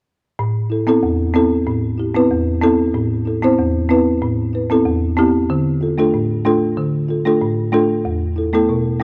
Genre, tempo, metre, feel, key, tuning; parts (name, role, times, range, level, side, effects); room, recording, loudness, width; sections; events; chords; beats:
dancehall; 94 BPM; 4/4; straight; A minor; A4 = 440 Hz
folk marimba with medium mallets; accompaniment; 0.4-9.0 s; E2 to C5; -17 LUFS; equal
light reverb, studio reverb; dry, gritty hardware recording; -17 LUFS; mono
0.4-9.0 A section
0.4 Amadd9; 5.5 Dm; 8.0 Esus4
| 0.39 1.03 1.67 2.31 | 2.94 3.58 4.22 4.86 | 5.50 6.13 6.77 7.41 | 8.05 8.69